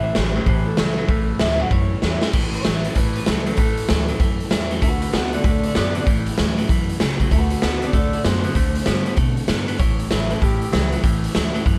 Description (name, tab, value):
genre	rockabilly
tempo	193 BPM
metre	4/4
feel	swing 63% on 8ths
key	A mixolydian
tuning	A4 = 439 Hz
part	electric guitar through a small old amp	melody	0.0-11.0 s	F#4 to F#5	-30 LUFS	equal	tape echo
part	picked steel-string acoustic guitar	accompaniment	0.0-11.8 s	E2 to F#4	-30 LUFS	equal	none
part	electric guitar at the edge of break-up	riff	0.0-11.8 s	A2 to B3	-28 LUFS	equal	phaser
part	upright bass	bass	0.0-11.8 s	A1 to B2	-26 LUFS	equal	none
part	raw garage drum kit	drums	0.1-11.8 s	crash cymbal, hi-hat, kick drum, snare drum	-23 LUFS	equal	none
room	light reverb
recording	none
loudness	-20 LUFS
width	mono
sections	0.0-2.3 A section; 2.3-11.8 B section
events	clean electric guitar solo 0.0-2.3; drum fill 2.0-2.3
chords	0.0 A7; 4.8 D7; 6.1 A7; 7.3 D7; 9.8 A7